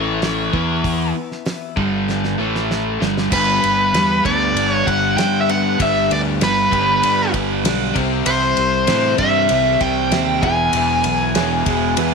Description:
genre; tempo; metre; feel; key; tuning
classic rock; 97 BPM; 4/4; straight; unclear; A4 = 440 Hz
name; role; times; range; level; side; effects
octave-fuzz lead guitar; second line; 0.0-1.1 s; C#5; -26 LUFS; left 10 dB; distortion
picked twelve-string acoustic guitar; accompaniment; 0.0-12.1 s; E2 to D5; -30 LUFS; left 12 dB; none
overdriven electric guitar; riff; 0.0-12.1 s; E2 to E4; -23 LUFS; left 14 dB; none
raw garage guitar; riff; 0.0-12.1 s; E2 to G4; -22 LUFS; right 15 dB; overdrive
growling fingered electric bass; bass; 0.0-12.1 s; E1 to A2; -24 LUFS; equal; overdrive
damped 70s drum kit; drums; 0.2-12.1 s; crash cymbal, hi-hat, kick drum, ride cymbal, snare drum; -25 LUFS; equal; none
smooth overdriven lead guitar; melody; 3.3-12.1 s; B4 to G#5; -17 LUFS; equal; slapback echo
bright upright piano; accompaniment; 8.3-12.1 s; G4 to E5; -29 LUFS; right 13 dB; none
room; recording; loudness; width
light reverb, studio reverb; 1960s-style stereo with parts hard left and right; -15 LUFS; side -5 dB against mid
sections
0.0-3.3 A section; 3.3-12.1 B section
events
drum fill 2.1-3.3; upright piano fill 12.0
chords
0.0 A; 0.5 E5; 1.8 G5; 2.4 A; 3.3 G; 8.0 C; 10.4 E

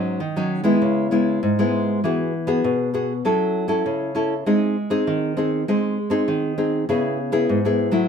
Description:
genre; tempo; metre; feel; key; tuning
samba; 99 BPM; 4/4; straight; C# minor; A4 = 440 Hz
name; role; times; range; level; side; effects
nylon-string guitar; solo; 0.0-8.1 s; G#2 to A4; -19 LUFS; equal; none
room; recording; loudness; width
moderate studio reverb, RT60 0.8 s; minimal, uncompressed stereo recording; -19 LUFS; side -7 dB against mid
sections
0.0-8.1 A section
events
none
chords
0.0 G#7sus4; 0.8 C#m7; 2.0 Eadd9; 3.2 F#m7; 4.5 G#; 6.9 C#m7

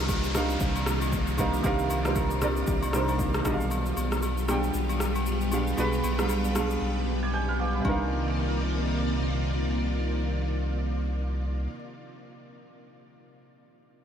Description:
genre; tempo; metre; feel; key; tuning
amapiano; 116 BPM; 4/4; swing 58% on 16ths; C minor; A4 = 445 Hz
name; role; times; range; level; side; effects
warm grand piano; accompaniment; 0.0-14.0 s; B2 to Ab6; -30 LUFS; right 2 dB; lush chorus
string machine, full ensemble; sustained chords; 0.0-11.7 s; C3 to G5; -32 LUFS; left 1 dB; ensemble chorus, sidechain pumping
warm sub bass; bass; 0.0-11.7 s; B1 to C2; -30 LUFS; equal; none
downlifter; sound effects; 0.0-3.7 s; none; -39 LUFS; left 1 dB; none
deep house drum kit; drums; 0.1-8.0 s; kick drum, rim click, shaker; -32 LUFS; equal; overdrive
agogo bells and woodblock; percussion; 0.1-8.1 s; none; -39 LUFS; left 5 dB; none
room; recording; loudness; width
wet huge ambient reverb, RT60 7.2 s; dreamy mix soaked in reverb; -25 LUFS; side -8 dB against mid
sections
0.0-7.8 A section; 7.8-12.0 B section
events
drums muted 6.8-7.8; grand piano fill 7.1-7.8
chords
0.0 Cm11; 3.5 G7b9/B; 7.8 Cm11

